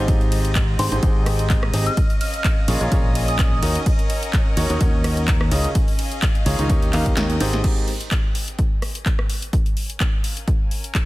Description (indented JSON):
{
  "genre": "piano house",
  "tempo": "127 BPM",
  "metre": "4/4",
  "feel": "swing 54% on 16ths",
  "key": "Ab major",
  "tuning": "A4 = 440 Hz",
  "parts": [
    { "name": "warm chamber violin section", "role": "sustained chords", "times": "0.0-7.7 s", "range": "Eb5", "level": "-33 LUFS", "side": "left 1 dB", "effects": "sidechain pumping" },
    { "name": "clear concert grand piano", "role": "riff", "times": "0.0-7.9 s", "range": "Ab2 to F5", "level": "-26 LUFS", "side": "equal", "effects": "sidechain pumping, tape echo" },
    { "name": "fingered electric bass", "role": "bass", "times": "0.0-7.6 s", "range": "Ab1 to Eb2", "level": "-22 LUFS", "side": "equal", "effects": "sidechain pumping" },
    { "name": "rich chamber string section", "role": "texture", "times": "0.0-11.1 s", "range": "Ab3 to Ab5", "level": "-33 LUFS", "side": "left 2 dB", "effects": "sidechain pumping" },
    { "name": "electronic kick drum", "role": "drums", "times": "0.1-11.1 s", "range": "none", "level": "-20 LUFS", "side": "equal", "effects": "none" },
    { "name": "house drum kit", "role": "drums", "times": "0.1-11.1 s", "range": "crash cymbal, handclaps, hi-hat, ride cymbal, rim click, snare drum", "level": "-27 LUFS", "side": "equal", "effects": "none" },
    { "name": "soft synth bell", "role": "melody", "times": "0.8-3.7 s", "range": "C6 to F6", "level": "-30 LUFS", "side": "equal", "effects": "chorus, phaser, tape echo" }
  ],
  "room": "studio reverb",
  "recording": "none",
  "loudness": "-17 LUFS",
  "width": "side -18 dB against mid",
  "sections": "0.0-7.6 A section; 7.6-11.1 B section",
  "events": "drop 0.0-7.6; kick drops out 7.2-7.6; drum fill 7.2-7.6",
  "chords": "0.1 Abmaj7; 2.0 Bbm7; 3.6 Ebm7; 5.5 Dbadd9; 6.7 Eb7; 7.6 Abmaj7; 9.5 Bbm7"
}